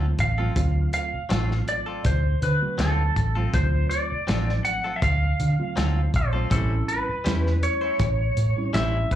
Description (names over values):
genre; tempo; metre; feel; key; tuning
straight-eighth soul blues; 81 BPM; 4/4; swing 53% on 16ths; unclear; A4 = 440 Hz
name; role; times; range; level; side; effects
mellow reed electric piano; accompaniment; 0.0-9.1 s; E#3 to F#4; -33 LUFS; right 5 dB; slapback echo
direct-recorded clean electric guitar; stabs; 0.0-9.0 s; F#3 to B#4; -34 LUFS; left 4 dB; slapback echo
vintage muted fingered electric bass; bass; 0.0-9.2 s; A1 to D3; -23 LUFS; equal; none
clean lap steel guitar; melody; 0.2-9.2 s; A4 to F#5; -27 LUFS; equal; slapback echo
warm soul drum kit; drums; 0.2-9.2 s; hi-hat, kick drum, snare drum; -28 LUFS; equal; none
room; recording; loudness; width
little or no reverb; live gig heard through the venue's PA, club reverb; -21 LUFS; side -11 dB against mid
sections
0.0-9.2 A section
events
none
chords
0.0 D7#9; 6.5 A7#9